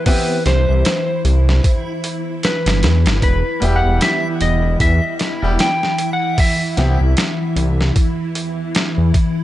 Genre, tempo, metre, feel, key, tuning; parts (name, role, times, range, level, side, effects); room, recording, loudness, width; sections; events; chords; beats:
trip hop; 76 BPM; 4/4; swing 58% on 16ths; A4 = 440 Hz
electric slide guitar; melody; 0.0-8.7 s; B4 to G5; -21 LUFS; left 1 dB; vintage 12-bit sampler grit, tape echo
string machine, cellos; sustained chords; 0.0-9.4 s; E3 to E4; -23 LUFS; equal; phaser, ensemble chorus
backwards swelling texture; texture; 0.0-9.4 s; E4; -31 LUFS; right 1 dB; built-in reverb
bright upright piano; accompaniment; 0.1-7.0 s; G3 to G4; -25 LUFS; left 1 dB; harmonic tremolo, tape echo
boom bap sampler-style drum kit; drums; 0.1-9.4 s; hi-hat, kick drum, snare drum; -18 LUFS; equal
dark detuned saw bass; bass; 0.5-9.1 s; E1 to E2; -15 LUFS; equal
light reverb; nothing above 10.6 kHz; -14 LUFS; side -14 dB against mid
0.0-9.4 A section
0.1 Cmaj7; 3.2 Em; 6.4 C
| 0.06 0.85 1.64 2.43 | 3.22 4.01 4.80 5.59 | 6.38 7.17 7.96 8.75